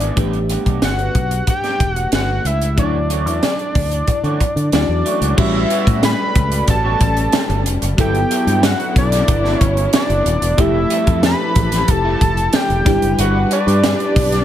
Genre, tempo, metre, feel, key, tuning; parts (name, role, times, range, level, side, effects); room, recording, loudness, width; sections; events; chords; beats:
polished 1980s jazz-funk pop; 92 BPM; 4/4; straight; A4 = 443 Hz
fat analog lead; melody; 0.0-14.4 s; D5 to B5; -20 LUFS; equal; chorus
bell-like FM electric piano; accompaniment; 0.0-14.4 s; F3 to D5; -23 LUFS; left 2 dB; analog chorus
electric guitar through a small old amp; riff; 0.0-14.4 s; E3 to B4; -28 LUFS; right 5 dB; analog chorus
fretless electric bass; bass; 0.0-14.4 s; D#1 to D3; -19 LUFS; equal
crisp fusion drum kit; drums; 0.0-14.4 s; crash cymbal, hi-hat, kick drum, snare drum; -18 LUFS; equal; gated reverb
dark studio string section; sustained chords; 5.4-14.4 s; F3 to B4; -24 LUFS; left 1 dB
small room ambience; -14 LUFS; side -11 dB against mid
0.0-5.4 A section; 5.4-14.4 B section
0.2 A9sus4; 2.8 Dmaj9; 5.4 A13; 8.0 Gmaj13; 10.6 Fmaj9; 12.9 Em9
| 0.17 0.82 1.47 2.12 | 2.78 3.43 4.08 4.73 | 5.38 6.03 6.68 7.33 | 7.98 8.63 9.29 9.94 | 10.59 11.23 11.88 12.54 | 13.19 13.84